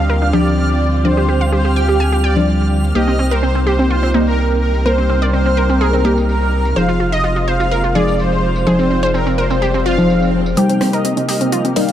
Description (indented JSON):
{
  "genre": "progressive house",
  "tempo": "126 BPM",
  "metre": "4/4",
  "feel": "straight",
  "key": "C minor",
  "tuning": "A4 = 441 Hz",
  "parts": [
    { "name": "soft supersaw", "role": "melody", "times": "0.0-11.9 s", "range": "G4 to G5", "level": "-21 LUFS", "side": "right 1 dB", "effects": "phaser, low-pass filter, dub echo" },
    { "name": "dark studio string section", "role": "sustained chords", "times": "0.0-11.9 s", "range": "C3 to D5", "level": "-22 LUFS", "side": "right 1 dB", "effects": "low-pass filter" },
    { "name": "wide unison pluck", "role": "arpeggios", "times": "0.0-11.9 s", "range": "C4 to Ab5", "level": "-20 LUFS", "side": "right 1 dB", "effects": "dub echo" },
    { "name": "deep mellow chord stab", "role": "stabs", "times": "0.0-11.9 s", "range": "D3 to D5", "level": "-19 LUFS", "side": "left 2 dB", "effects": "wide subtle chorus, dub echo" },
    { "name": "saturated sub bass", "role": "bass", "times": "0.0-10.5 s", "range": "F1 to D2", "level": "-18 LUFS", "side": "equal", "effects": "none" },
    { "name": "backwards swelling texture", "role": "texture", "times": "0.0-10.6 s", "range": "F6", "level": "-30 LUFS", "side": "right 3 dB", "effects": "built-in reverb" },
    { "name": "pop drum kit", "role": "drums", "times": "0.1-11.9 s", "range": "hi-hat, rim click, tambourine", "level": "-29 LUFS", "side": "left 1 dB", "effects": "high-pass filter on perc, low-pass filter on perc, high-pass filter on hats, low-pass filter on hats, high-pass filter on snare, low-pass filter on snare" },
    { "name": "swell and riser", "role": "sound effects", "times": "9.8-11.9 s", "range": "none", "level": "-26 LUFS", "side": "left 4 dB", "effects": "none" }
  ],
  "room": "light reverb",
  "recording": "dark, warm production",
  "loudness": "-13 LUFS",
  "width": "side -11 dB against mid",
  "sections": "0.0-10.6 A section; 10.6-11.9 B section",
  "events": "swell 9.8-10.6; build-up 10.6-11.9; filter sweep on synth stab 10.6-11.9; filter sweep on string section 10.6-11.9",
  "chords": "0.0 G7sus4/D; 3.0 Cm7; 6.8 Fm7; 10.6 Cm7"
}